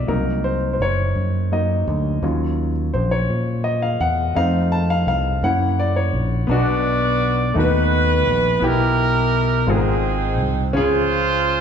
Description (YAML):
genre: slow gospel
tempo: 56 BPM (dotted quarters)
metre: 6/8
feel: straight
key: unclear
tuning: A4 = 440 Hz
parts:
  - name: warm baby grand piano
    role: accompaniment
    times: 0.0-11.6 s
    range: G#2 to A5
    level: -21 LUFS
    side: left 2 dB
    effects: none
  - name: fingered electric bass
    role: bass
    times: 0.0-11.6 s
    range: Gb1 to Bb2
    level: -21 LUFS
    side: right 1 dB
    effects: none
  - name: warm horn section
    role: melody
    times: 6.5-11.6 s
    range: B#3 to D5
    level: -20 LUFS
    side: right 2 dB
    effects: none
room: wet large studio reverb, RT60 1.2 s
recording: band playing live in one room, nothing above 8.0 kHz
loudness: -17 LUFS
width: side -7 dB against mid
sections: 0.0-6.5 A section; 6.5-11.6 B section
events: grand piano solo 0.0-6.5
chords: 0.1 Cm7b5; 2.2 Ebm7; 4.4 F7; 5.4 Gb7; 6.5 Bm; 7.6 B7/D#; 8.6 Em/B; 9.7 G#13; 10.7 C#